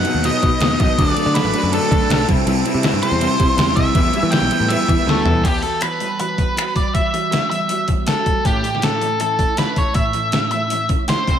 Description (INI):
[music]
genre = indie rock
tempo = 160 BPM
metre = 4/4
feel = straight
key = E minor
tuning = A4 = 440 Hz
[part]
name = octave-fuzz lead guitar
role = melody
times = 0.0-11.4 s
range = G4 to G5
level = -20 LUFS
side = equal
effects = distortion, analog delay
[part]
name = glockenspiel with rubber mallets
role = second line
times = 0.0-5.2 s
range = A5 to G6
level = -32 LUFS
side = equal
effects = none
[part]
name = tonewheel organ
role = sustained chords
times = 0.0-5.4 s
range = E4 to B5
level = -33 LUFS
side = right 1 dB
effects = none
[part]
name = electric guitar through a small old amp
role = riff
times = 0.0-11.4 s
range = A2 to E4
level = -24 LUFS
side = left 6 dB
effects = slapback echo
[part]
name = mellow electric guitar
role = riff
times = 0.0-11.4 s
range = A2 to F#4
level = -24 LUFS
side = right 6 dB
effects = ensemble chorus, slapback echo
[part]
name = overdriven picked electric bass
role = bass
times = 0.0-5.4 s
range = A1 to E3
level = -21 LUFS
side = equal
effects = none
[part]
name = detuned 8-bit digital drum machine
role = drums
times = 0.0-11.4 s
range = crash cymbal, finger snaps, hi-hat, kick drum, snare drum, toms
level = -19 LUFS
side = equal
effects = overdrive
[sound]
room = moderate lush hall reverb, RT60 1.8 s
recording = big arena sound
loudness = -15 LUFS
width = side -9 dB against mid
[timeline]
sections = 0.0-5.4 A section; 5.4-11.4 B section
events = drum fill 5.1-5.4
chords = 0.0 B; 1.0 D; 2.3 C; 4.0 Em; 5.4 Emadd9; 8.5 A